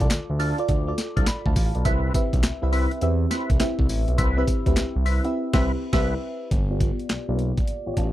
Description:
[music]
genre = R&B, new jack swing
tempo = 103 BPM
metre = 4/4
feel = swing 65% on 16ths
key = C major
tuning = A4 = 440 Hz
[part]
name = mellow FM electric piano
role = accompaniment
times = 0.0-8.1 s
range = Bb3 to B5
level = -28 LUFS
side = right 1 dB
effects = chorus, phaser, low-pass filter
[part]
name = smooth synth bass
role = bass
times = 0.0-8.1 s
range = G1 to E2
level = -24 LUFS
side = equal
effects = none
[part]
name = breakbeat sampler-style drum kit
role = drums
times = 0.0-8.1 s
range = crash cymbal, handclaps, hi-hat, kick drum, snare drum, tambourine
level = -23 LUFS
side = equal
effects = none
[part]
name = percussive tonewheel organ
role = stabs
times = 0.4-6.1 s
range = C4 to B4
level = -29 LUFS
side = left 1 dB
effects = overdrive, chorus vibrato, slow rotary speaker
[sound]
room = little or no reverb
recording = dry, close 1970s-style studio recording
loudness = -21 LUFS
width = side -14 dB against mid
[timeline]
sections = 0.0-6.5 A section; 6.5-8.1 B section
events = FM electric piano fill 1.0-1.9; band accent 5.3-6.5; filter sweep on FM electric piano 6.5-8.1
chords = 0.0 Dm; 1.9 Cmaj7; 6.5 G7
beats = 0.11 0.69 1.27 | 1.85 2.44 3.02 3.60 | 4.18 4.77 5.35 5.93 | 6.51 7.10 7.68

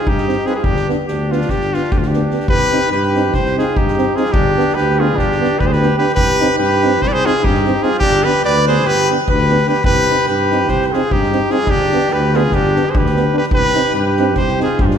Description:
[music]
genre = balkan folk, Balkan brass band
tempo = 294 BPM (eighths)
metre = 9/8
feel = straight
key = unclear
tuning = A4 = 440 Hz
[part]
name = clear trumpet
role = melody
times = 0.0-15.0 s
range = F4 to D5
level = -17 LUFS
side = left 2 dB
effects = none
[part]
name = clear flugelhorn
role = second line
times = 0.0-15.0 s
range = D4 to B4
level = -21 LUFS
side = right 4 dB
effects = none
[part]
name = mellow tuba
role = bass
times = 0.1-15.0 s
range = G1 to G2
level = -20 LUFS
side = left 1 dB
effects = none
[part]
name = soft-mallet drum kit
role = percussion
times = 0.1-15.0 s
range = kick drum, snare drum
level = -21 LUFS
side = equal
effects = none
[part]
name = warm French horn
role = accompaniment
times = 0.3-14.7 s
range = D4 to Eb4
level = -26 LUFS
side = left 4 dB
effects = none
[part]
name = warm euphonium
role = accompaniment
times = 0.3-14.7 s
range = B3 to C4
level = -23 LUFS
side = right 4 dB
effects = none
[sound]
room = wet scoring stage reverb, RT60 1.5 s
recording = recorded in a church or concert hall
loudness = -13 LUFS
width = side -8 dB against mid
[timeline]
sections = 0.0-2.5 A section; 2.5-15.0 A section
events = none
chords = 0.0 Cm; 0.6 G; 2.5 Cm; 4.3 G; 6.2 Cm; 8.0 G; 9.8 Cm; 11.7 G; 13.5 Cm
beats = 0.02 0.23 0.43 | 0.64 0.84 1.05 1.26 1.46 1.67 1.87 2.08 2.28 | 2.49 2.69 2.90 3.10 3.31 3.51 3.72 3.92 4.13 | 4.33 4.54 4.74 4.95 5.15 5.36 5.56 5.76 5.97 | 6.17 6.38 6.58 6.78 6.99 7.19 7.40 7.60 7.80 | 8.01 8.21 8.42 8.62 8.82 9.03 9.23 9.44 9.64 | 9.84 10.05 10.25 10.46 10.66 10.86 11.07 11.27 11.48 | 11.68 11.88 12.09 12.29 12.50 12.70 12.90 13.11 13.31 | 13.52 13.72 13.93 14.13 14.34 14.54 14.75 14.96

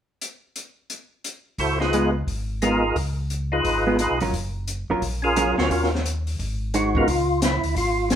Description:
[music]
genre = soul jazz organ trio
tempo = 175 BPM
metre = 4/4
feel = swing 62% on 8ths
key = Db mixolydian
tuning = A4 = 442 Hz
[part]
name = open jazz drum kit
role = drums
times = 0.2-8.2 s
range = hi-hat, kick drum, snare drum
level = -28 LUFS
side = left 1 dB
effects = none
[part]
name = percussive tonewheel organ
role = melody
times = 1.6-8.2 s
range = Db3 to C5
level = -22 LUFS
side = equal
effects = slow rotary speaker, overdrive, chorus vibrato
[part]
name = mellow tonewheel organ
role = bass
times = 1.6-8.2 s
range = Gb1 to Eb2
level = -27 LUFS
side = equal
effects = chorus vibrato, slow rotary speaker
[part]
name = hollow-body jazz guitar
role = accompaniment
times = 1.9-7.1 s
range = Gb3 to C5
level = -24 LUFS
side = right 2 dB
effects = none
[sound]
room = wet studio reverb, RT60 0.7 s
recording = band playing live in one room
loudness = -20 LUFS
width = side -9 dB against mid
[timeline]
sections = 0.2-1.6 A section; 1.6-7.1 B section; 7.1-8.2 C section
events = none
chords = 0.2 N.C.; 1.6 Db7; 4.3 Gbmaj7; 5.7 Ebm7; 6.4 Ab7; 7.1 Db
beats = | 0.22 0.56 0.91 1.25 | 1.59 1.94 2.28 2.62 | 2.96 3.31 3.65 4.00 | 4.34 4.68 5.02 5.37 | 5.71 6.05 6.40 6.74 | 7.08 7.42 7.77 8.11

